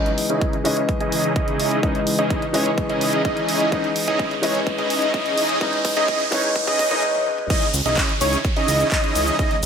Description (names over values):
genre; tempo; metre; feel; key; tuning
EDM, festival progressive house; 127 BPM; 4/4; straight; C# minor; A4 = 439 Hz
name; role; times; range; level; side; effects
dark grand piano; accompaniment; 0.0-7.5 s; E3 to D#5; -24 LUFS; left 3 dB; vintage 12-bit sampler grit, sidechain pumping, digital delay
lush unison pad; sustained chords; 0.0-9.7 s; C#3 to D#5; -30 LUFS; equal; chorus, sidechain pumping
wide unison lead; arpeggios; 0.0-9.6 s; C#5 to D#5; -25 LUFS; equal; sidechain pumping, digital delay
dense compressed supersaw; riff; 0.0-9.6 s; C#4 to D#5; -24 LUFS; right 1 dB; sidechain pumping, low-pass filter, digital delay
riser, swell and downlifter; sound effects; 0.0-9.7 s; none; -29 LUFS; right 2 dB; none
big-room dance drum kit; drums; 0.1-9.7 s; crash cymbal, handclaps, hi-hat, shaker, toms; -27 LUFS; right 1 dB; none
electronic kick drum; drums; 0.4-9.5 s; none; -24 LUFS; right 1 dB; none
fat analog bass; bass; 7.7-9.7 s; B1 to C#2; -24 LUFS; right 1 dB; tube saturation, sidechain pumping
room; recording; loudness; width
moderate scoring stage reverb, RT60 1.9 s; high-pass filter; -18 LUFS; side -7 dB against mid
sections
0.0-7.5 A section; 7.5-9.7 B section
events
build-up 0.0-7.5; riser 0.0-7.0; filter sweep on supersaw synth 0.0-7.5; filter sweep on analog synth lead 0.0-7.5; filter sweep 0.0-7.5; drum fill 3.7-7.0, 7.1-7.5; swell 6.6-7.5; stop 7.0-7.5; drop 7.5-9.7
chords
0.0 C#madd9